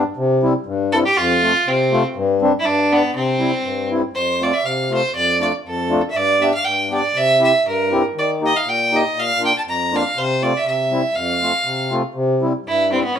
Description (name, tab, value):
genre	alpine folk, alpine dance band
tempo	120 BPM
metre	2/4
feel	straight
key	C major, F major from 4.2 s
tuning	A4 = 441 Hz
part	mellow accordion	accompaniment	0.0-13.2 s	F2 to G4	-19 LUFS	left 2 dB	none
part	bright fiddle	melody	0.9-13.2 s	B3 to Bb5	-18 LUFS	right 2 dB	none
room	moderate studio reverb, RT60 0.7 s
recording	band playing live in one room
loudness	-16 LUFS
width	side -8 dB against mid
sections	0.0-4.2 A section; 4.2-12.2 B section; 12.2-13.2 A section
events	none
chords	0.2 C; 1.2 F; 2.2 Gsus4; 2.7 G; 3.1 C; 4.2 F; 5.2 Dm/F; 6.2 G; 7.2 C; 8.2 Eb; 9.2 Bb; 10.2 F/C; 10.7 C; 11.2 F; 12.2 C